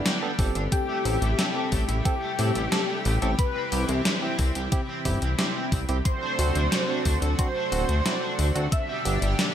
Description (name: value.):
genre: synthwave.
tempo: 90 BPM.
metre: 4/4.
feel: straight.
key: A dorian.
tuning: A4 = 438 Hz.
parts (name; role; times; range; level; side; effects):
lush unison pad; sustained chords; 0.0-9.5 s; B2 to G4; -31 LUFS; equal; chorus, sidechain pumping.
barky tine electric piano; stabs; 0.0-9.2 s; B3 to A4; -34 LUFS; right 4 dB; medium stereo tremolo, tape echo.
overdriven electric guitar; riff; 0.1-9.4 s; G3 to D5; -35 LUFS; right 1 dB; lush chorus, ping-pong delay.
gated 80s digital drum machine; drums; 0.1-9.5 s; hi-hat, snare drum; -28 LUFS; equal; gated reverb, gated reverb snare, overdrive.
chorused synth bass; bass; 0.4-9.3 s; D1 to A2; -25 LUFS; equal; sidechain pumping.
electronic kick drum; drums; 0.4-8.9 s; none; -26 LUFS; equal; overdrive.
mellow synth brass; melody; 0.7-9.2 s; G4 to E5; -31 LUFS; left 1 dB; chorus, tape echo.
FM electric piano with soft pad layer; second line; 0.7-9.2 s; G5 to E6; -38 LUFS; left 1 dB; chorus, tremolo, tape echo.
room: digital ambience.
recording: none.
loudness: -23 LUFS.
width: side -10 dB against mid.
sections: 0.0-9.5 A section.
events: none.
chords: 0.0 G; 0.7 Am7; 3.4 C; 6.1 D7; 8.7 G.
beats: 0.06 | 0.72 1.39 2.06 2.72 | 3.39 4.05 4.72 5.39 | 6.05 6.72 7.39 8.05 | 8.72 9.39.